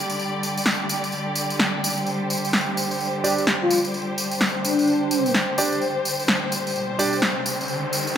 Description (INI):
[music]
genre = bass house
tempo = 128 BPM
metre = 4/4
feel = swing 62% on 16ths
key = unclear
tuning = A4 = 441 Hz
[part]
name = dark symphonic string section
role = sustained chords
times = 0.0-8.2 s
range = D3 to D5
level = -26 LUFS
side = left 1 dB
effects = none
[part]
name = tambourine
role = percussion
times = 0.1-8.1 s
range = none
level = -28 LUFS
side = left 1 dB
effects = none
[part]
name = electronic snare drum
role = drums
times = 0.7-7.3 s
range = none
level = -23 LUFS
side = equal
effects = overdrive
[part]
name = breathy flute-like synth lead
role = melody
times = 3.2-5.3 s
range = D4 to G4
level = -23 LUFS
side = left 1 dB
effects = ensemble chorus, cassette tape, dub echo
[part]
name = clear concert grand piano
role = stabs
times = 3.2-7.1 s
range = D4 to D5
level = -27 LUFS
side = right 3 dB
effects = low-pass filter, dub echo
[part]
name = riser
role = sound effects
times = 6.5-8.2 s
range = none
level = -32 LUFS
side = right 1 dB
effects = none
[sound]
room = moderate plate reverb, RT60 2.4 s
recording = none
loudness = -20 LUFS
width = side -9 dB against mid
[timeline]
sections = 0.0-8.2 A section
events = filter sweep on grand piano 0.0-8.2; riser 6.5-8.2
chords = 0.0 G5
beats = | 0.19 0.66 1.13 1.60 | 2.07 2.54 3.00 3.47 | 3.94 4.41 4.88 5.35 | 5.82 6.29 6.75 7.22 | 7.69 8.16